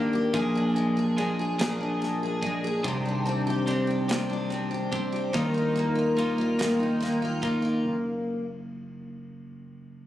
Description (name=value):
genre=six-eight pop ballad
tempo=48 BPM (dotted quarters)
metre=6/8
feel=straight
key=Eb major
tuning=A4 = 440 Hz
part: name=picked steel-string acoustic guitar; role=accompaniment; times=0.0-8.4 s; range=Bb2 to Ab4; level=-27 LUFS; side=left 1 dB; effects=double-tracked left and right
part: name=twelve-string electric guitar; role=arpeggios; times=0.0-7.9 s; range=Bb2 to Ab4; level=-31 LUFS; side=equal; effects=spring reverb
part: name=fingered electric bass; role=bass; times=0.0-10.1 s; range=Gb1 to Eb2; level=-31 LUFS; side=equal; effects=none
part: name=modern studio drum kit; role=drums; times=0.3-7.6 s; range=kick drum, ride cymbal, snare drum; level=-34 LUFS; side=equal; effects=none
room=light reverb, small room ambience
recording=recorded on a phone in the room, club reverb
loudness=-24 LUFS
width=side -13 dB against mid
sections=0.0-7.9 A section; 7.9-10.1 B section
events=none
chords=0.3 Bb7; 2.8 Cmadd9; 5.3 Ebadd9; 7.9 N.C.